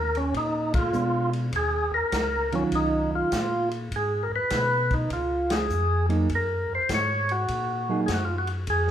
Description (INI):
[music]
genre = soul jazz organ trio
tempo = 101 BPM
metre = 4/4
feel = swing 67% on 8ths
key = unclear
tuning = A4 = 440 Hz
[part]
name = percussive tonewheel organ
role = melody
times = 0.0-8.9 s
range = Db4 to Db5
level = -25 LUFS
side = equal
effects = slow rotary speaker
[part]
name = mellow tonewheel organ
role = bass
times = 0.0-8.9 s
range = C2 to Cb3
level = -29 LUFS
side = left 1 dB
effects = slow rotary speaker
[part]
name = vintage drum kit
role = drums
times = 0.1-8.9 s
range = hi-hat, kick drum, ride cymbal, snare drum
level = -32 LUFS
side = equal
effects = none
[part]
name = hollow-body jazz guitar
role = accompaniment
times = 0.9-8.1 s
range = Eb3 to Ab4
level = -28 LUFS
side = right 4 dB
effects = none
[sound]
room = wet large studio reverb, RT60 0.8 s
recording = band playing live in one room, faint mains hum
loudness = -23 LUFS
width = side -10 dB against mid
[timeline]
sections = 0.0-8.9 A section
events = band accent 0.6, 5.4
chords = 0.3 Bb7b9; 1.5 Ebm9; 3.9 Abm; 5.1 Db; 6.3 Gbadd9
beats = 0.34 0.94 | 1.53 2.13 2.72 3.32 | 3.91 4.51 5.10 5.70 | 6.29 6.89 7.48 8.08 | 8.67